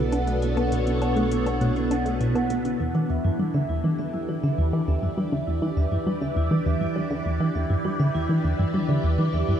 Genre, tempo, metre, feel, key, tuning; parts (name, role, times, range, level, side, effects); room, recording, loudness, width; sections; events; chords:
ambient, sequencer-driven space music; 101 BPM; 4/4; straight; E minor; A4 = 438 Hz
phased string machine; sustained chords; 0.0-9.6 s; B2 to D5; -27 LUFS; equal; ensemble chorus, phaser
vibraphone with medium mallets; arpeggios; 0.0-9.5 s; D4 to F#5; -31 LUFS; right 2 dB; auto-pan, low-pass filter, tape echo
plucky analog bass; riff; 0.0-9.5 s; E2 to D4; -24 LUFS; equal; tape echo
warm sub bass; bass; 0.0-2.8 s; B1; -29 LUFS; equal
bubbling stepped-filter texture; texture; 0.0-2.8 s; B4; -44 LUFS; right 1 dB
electronic hi-hat and woodblock; percussion; 0.1-2.8 s; -44 LUFS; left 4 dB; overdrive, tape echo
wet cathedral reverb, RT60 5.3 s; in a vast, echoing space; -22 LUFS; side -9 dB against mid
0.0-2.8 A section; 2.8-9.6 B section
filter sweep on analog synth bass 0.0-2.8; filter sweep on vibraphone 2.8-9.6
0.0 Bm7; 2.8 Em7